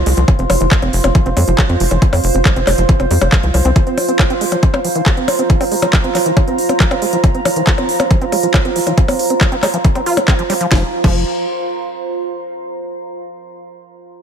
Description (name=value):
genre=psychedelic trance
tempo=138 BPM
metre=4/4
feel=straight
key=unclear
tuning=A4 = 441 Hz
part: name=tight sequencer bass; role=bass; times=0.0-3.7, 10.7-11.2 s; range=F1 to F2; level=-15 LUFS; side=equal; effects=none
part: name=deep dark ambient pad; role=texture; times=0.0-12.4 s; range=F4 to C6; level=-19 LUFS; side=right 3 dB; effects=chorus, built-in reverb, sidechain pumping
part: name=overdriven acid bass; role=riff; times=0.1-11.2 s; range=E3 to F4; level=-21 LUFS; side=equal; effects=auto-pan, sidechain pumping, digital delay
part: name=techno drum kit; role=drums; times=0.1-11.1 s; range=crash cymbal, handclaps, hi-hat, percussion blips, snare drum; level=-19 LUFS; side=left 1 dB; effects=none
part: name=electronic kick drum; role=drums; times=0.3-11.1 s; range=none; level=-12 LUFS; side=equal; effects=none
room=light reverb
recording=none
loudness=-12 LUFS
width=side -8 dB against mid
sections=0.0-10.7 A section; 10.7-12.5 B section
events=filter sweep on acid bass 0.0-10.7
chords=0.0 F5